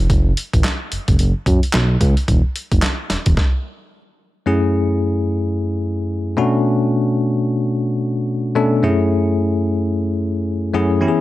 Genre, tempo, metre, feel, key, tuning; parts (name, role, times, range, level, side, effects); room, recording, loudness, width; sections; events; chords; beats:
R&B, new jack swing; 110 BPM; 4/4; swing 60% on 16ths; F# minor; A4 = 438 Hz
smooth synth bass; bass; 0.0-3.4 s; E1 to F#2; -17 LUFS; equal
boom bap sampler-style drum kit; drums; 0.1-3.5 s; handclaps, hi-hat, kick drum, snare drum; -17 LUFS; equal
bell-like tine electric piano; accompaniment; 4.5-11.2 s; F#2 to A4; -16 LUFS; left 1 dB; fast stereo tremolo
digital ambience; -16 LUFS; side -16 dB against mid
0.0-4.5 A section; 4.5-11.2 B section
stop 3.4-4.5
0.1 N.C.; 2.3 Esus2; 4.5 F#m7; 6.4 Bm7; 8.8 F#m7
| 0.10 0.64 1.19 1.74 | 2.28 2.83 3.37 3.92 | 4.46 5.01 5.55 6.10 | 6.64 7.19 7.74 8.28 | 8.83 9.37 9.92 10.46 | 11.01